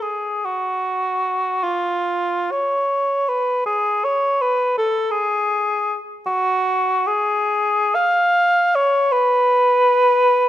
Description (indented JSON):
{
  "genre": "classical, free, expressive piece for unaccompanied cor anglais",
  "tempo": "64-84 BPM",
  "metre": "3/4",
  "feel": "rubato",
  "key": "F# minor",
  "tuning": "A4 = 441 Hz",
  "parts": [
    { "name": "mellow cor anglais", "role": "solo", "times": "0.0-10.5 s", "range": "E#4 to E#5", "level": "-16 LUFS", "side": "equal", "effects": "none" }
  ],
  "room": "moderate recital hall reverb, RT60 1.5 s",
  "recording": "close, detailed microphones",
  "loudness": "-16 LUFS",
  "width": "side -12 dB against mid",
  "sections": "0.0-10.5 A section",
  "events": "none",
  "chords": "none"
}